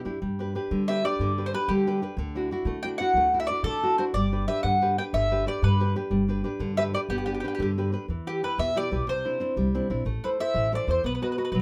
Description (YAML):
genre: italian folk, Italian serenade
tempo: 122 BPM (dotted quarters)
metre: 6/8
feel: straight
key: G major, E minor from 8.1 s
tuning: A4 = 439 Hz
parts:
  - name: nylon-string guitar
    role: accompaniment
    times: 0.0-11.6 s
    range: B2 to D#5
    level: -32 LUFS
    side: equal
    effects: none
  - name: upright bass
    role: bass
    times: 0.1-11.6 s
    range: G1 to G3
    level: -31 LUFS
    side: equal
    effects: none
  - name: mandolin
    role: melody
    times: 0.9-11.6 s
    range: G4 to G5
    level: -29 LUFS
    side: equal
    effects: none
room: moderate small room reverb, RT60 0.5 s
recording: none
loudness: -26 LUFS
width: mono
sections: 0.2-8.1 A section; 8.1-11.6 B section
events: none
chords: 0.2 G; 2.2 Dadd9; 4.1 G; 8.1 Em; 9.1 Cadd9; 10.1 Am; 11.0 B